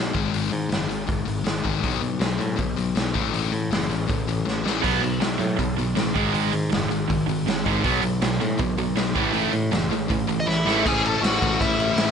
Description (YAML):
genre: punk rock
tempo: 160 BPM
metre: 4/4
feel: straight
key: unclear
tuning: A4 = 439 Hz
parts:
  - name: sludgy distorted guitar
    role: riff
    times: 0.0-12.1 s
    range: G#2 to B3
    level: -26 LUFS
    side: left 11 dB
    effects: overdrive
  - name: modern bright picked electric bass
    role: bass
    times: 0.0-12.1 s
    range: F#1 to A2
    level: -28 LUFS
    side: right 1 dB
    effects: none
  - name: raw garage drum kit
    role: drums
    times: 0.1-12.1 s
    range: crash cymbal, hi-hat, kick drum, snare drum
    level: -26 LUFS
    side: right 1 dB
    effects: none
  - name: cranked stack guitar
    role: riff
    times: 4.8-10.8 s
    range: G#2 to B3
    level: -25 LUFS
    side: right 17 dB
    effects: overdrive
  - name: smooth overdriven lead guitar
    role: melody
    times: 10.4-12.1 s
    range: E4 to A5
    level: -23 LUFS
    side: equal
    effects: digital delay
room: little or no reverb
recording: nothing above 10.6 kHz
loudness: -21 LUFS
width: side -7 dB against mid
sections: 0.0-10.8 A section; 10.8-12.1 B section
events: drum fill 4.5-4.8, 10.5-10.8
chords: 0.1 G#5; 1.8 B5; 3.1 A5; 4.8 B5; 6.2 G#5; 7.8 B5; 9.2 A5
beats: | 0.33 0.70 1.08 1.46 | 1.83 2.21 2.58 2.96 | 3.33 3.71 4.09 4.46 | 4.84 5.21 5.59 5.97 | 6.34 6.72 7.09 7.47 | 7.84 8.22 8.60 8.97 | 9.35 9.72 10.10 10.47 | 10.85 11.22 11.60 11.97